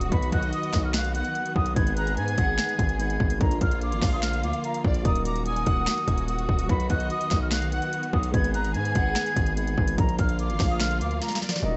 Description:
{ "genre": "hip hop, trap", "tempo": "146 BPM", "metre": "4/4", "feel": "half-time", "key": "unclear", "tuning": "A4 = 441 Hz", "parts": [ { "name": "silver concert flute", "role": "melody", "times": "0.0-11.8 s", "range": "Eb5 to Ab6", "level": "-32 LUFS", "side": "equal", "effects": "low-pass filter, digital delay" }, { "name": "soft electric-piano-like synth keys", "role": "accompaniment", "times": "0.0-11.8 s", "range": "F3 to B4", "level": "-36 LUFS", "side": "equal", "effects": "chorus, low-pass filter" }, { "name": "warm symphonic string section", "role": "sustained chords", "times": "0.0-11.8 s", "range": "D3 to Ab4", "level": "-37 LUFS", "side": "equal", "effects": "none" }, { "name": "distorted 808-style bass", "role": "bass", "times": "0.0-11.8 s", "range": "Eb1 to Ab2", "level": "-30 LUFS", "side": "equal", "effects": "distortion" }, { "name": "trap drum kit", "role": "drums", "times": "0.0-11.7 s", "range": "finger snaps, hi-hat, kick drum, snare drum", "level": "-29 LUFS", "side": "equal", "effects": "none" }, { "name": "warm studio violin section", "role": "second line", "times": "0.3-11.6 s", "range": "D5 to Bb5", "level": "-39 LUFS", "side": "equal", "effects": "digital delay" } ], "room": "light reverb", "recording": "nothing above 8.0 kHz", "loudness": "-25 LUFS", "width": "mono", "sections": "0.0-11.6 A section", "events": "drum fill 11.2-11.6", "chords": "0.1 B; 1.8 Abm; 3.4 Bb; 5.1 Ebm; 6.7 B; 8.3 Abm; 10.0 Bb", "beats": "| 0.12 0.53 0.94 1.35 | 1.76 2.17 2.58 3.00 | 3.41 3.82 4.23 4.64 | 5.05 5.46 5.87 6.28 | 6.69 7.11 7.52 7.93 | 8.34 8.75 9.16 9.57 | 9.98 10.39 10.80 11.21 | 11.63" }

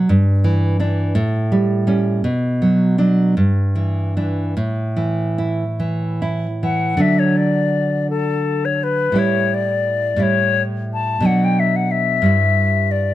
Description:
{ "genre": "romantic duo for flute and classical guitar", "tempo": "48-61 BPM (dotted quarters)", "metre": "6/8", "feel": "rubato", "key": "D major", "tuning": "A4 = 440 Hz", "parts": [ { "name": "nylon-string guitar", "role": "accompaniment", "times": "0.0-13.1 s", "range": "G2 to E4", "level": "-17 LUFS", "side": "right 1 dB", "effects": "none" }, { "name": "silver concert flute", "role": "melody", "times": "6.6-13.1 s", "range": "A4 to A5", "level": "-19 LUFS", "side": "left 5 dB", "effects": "plate reverb" } ], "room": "light reverb", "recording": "none", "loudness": "-16 LUFS", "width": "side -14 dB against mid", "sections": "0.0-7.0 A section; 7.0-13.1 B section", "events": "none", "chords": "0.1 Em7/G; 1.2 A7; 2.3 Bm; 3.4 Em7/G; 4.6 A5; 7.0 D; 9.2 A7; 11.3 Bm; 12.3 Em/G", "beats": "| 0.10 1.17 | 2.26 3.38 | 4.57 5.81 | 7.01 8.11 | 9.18 10.22 | 11.26 12.26" }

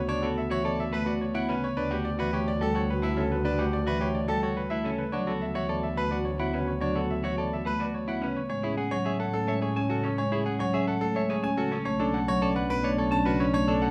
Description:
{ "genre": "classical, minimalist pattern music", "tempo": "107 BPM", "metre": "3/4", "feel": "straight", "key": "D major", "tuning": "A4 = 440 Hz", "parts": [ { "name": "bright grand piano", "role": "melody", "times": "0.0-13.9 s", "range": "G4 to A5", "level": "-34 LUFS", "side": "equal", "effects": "none" }, { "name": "mellow French horn", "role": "second line", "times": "0.0-13.9 s", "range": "C#4 to F#4", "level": "-39 LUFS", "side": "equal", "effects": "none" }, { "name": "rich double bass", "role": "bass", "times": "0.0-13.9 s", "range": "B1 to A2", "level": "-36 LUFS", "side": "equal", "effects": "none" }, { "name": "electric guitar at the edge of break-up", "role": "arpeggios", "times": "0.1-13.9 s", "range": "C#4 to C#5", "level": "-36 LUFS", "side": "equal", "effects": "none" }, { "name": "marimba with medium hard mallets", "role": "accompaniment", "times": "0.2-13.9 s", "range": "C#3 to C#4", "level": "-33 LUFS", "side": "equal", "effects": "none" } ], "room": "light reverb", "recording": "close, detailed microphones", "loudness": "-28 LUFS", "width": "mono", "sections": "0.0-8.5 A section; 8.5-13.9 B section", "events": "none", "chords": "0.0 Dmaj9; 1.8 Gmaj13/D; 5.1 Dmaj9; 8.5 Amaj7; 11.9 Bm7", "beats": "| 0.09 0.65 1.21 | 1.77 2.33 2.89 | 3.45 4.01 4.57 | 5.13 5.69 6.25 | 6.82 7.38 7.94 | 8.50 9.06 9.62 | 10.18 10.74 11.30 | 11.86 12.42 12.98 | 13.54" }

